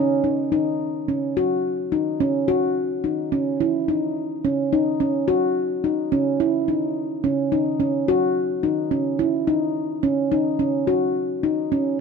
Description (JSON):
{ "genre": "progressive instrumental, progressive", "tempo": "107 BPM", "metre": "5/4", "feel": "straight", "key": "unclear", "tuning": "A4 = 440 Hz", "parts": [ { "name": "handpan", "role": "solo", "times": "0.0-11.9 s", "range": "C#4 to F#4", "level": "-20 LUFS", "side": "equal", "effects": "none" } ], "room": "light reverb", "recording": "none", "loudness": "-20 LUFS", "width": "side -5 dB against mid", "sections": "0.0-2.5 A section; 2.5-12.0 A section", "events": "none", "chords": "none", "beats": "0.23 0.79 1.35 1.91 | 2.47 3.04 3.60 4.16 4.72 | 5.28 5.84 6.40 6.96 7.52 | 8.08 8.64 9.20 9.76 10.32 | 10.88 11.44" }